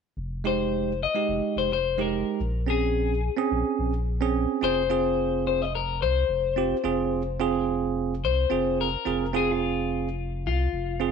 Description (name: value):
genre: straight-eighth soul blues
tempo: 108 BPM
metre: 4/4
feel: swing 53% on 16ths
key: F minor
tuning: A4 = 440 Hz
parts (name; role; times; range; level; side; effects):
- warm sub bass; bass; 0.2-11.1 s; F1 to C2; -30 LUFS; equal; none
- bell-like tine electric piano; accompaniment; 0.4-11.1 s; Ab3 to Ab4; -27 LUFS; right 10 dB; fast stereo tremolo
- electric guitar through a small old amp; melody; 0.5-11.1 s; F4 to Eb5; -27 LUFS; left 10 dB; slapback echo
room: moderate echo chamber reverb, RT60 1.4 s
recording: 1960s-style stereo with parts hard left and right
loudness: -23 LUFS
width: side -6 dB against mid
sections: 0.2-4.6 A section; 4.6-11.1 B section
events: none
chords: 0.2 Fm7; 2.4 Bbm7; 4.6 Fm